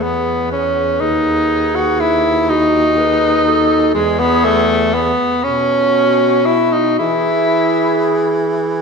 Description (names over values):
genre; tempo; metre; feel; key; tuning
classical, lyrical piece for single-reed quartet; 36-41 BPM (dotted quarters); 6/8; rubato; E major; A4 = 441 Hz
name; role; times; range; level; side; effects
mellow clarinet; melody; 0.0-8.8 s; F#4 to B4; -22 LUFS; left 8 dB; none
warm clarinet; second line; 0.0-8.8 s; F#4 to B4; -21 LUFS; right 10 dB; none
clear tenor saxophone; accompaniment; 0.0-8.6 s; G#3 to F#4; -14 LUFS; left 1 dB; none
clear baritone saxophone; bass; 0.0-8.8 s; D#2 to E3; -21 LUFS; right 2 dB; none
room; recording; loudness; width
wet scoring stage reverb, RT60 1.9 s; recorded in a church or concert hall; -12 LUFS; side -5 dB against mid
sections
0.0-8.8 A section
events
none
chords
0.0 E; 1.0 B/D#; 4.0 E; 5.4 Bsus2; 7.0 E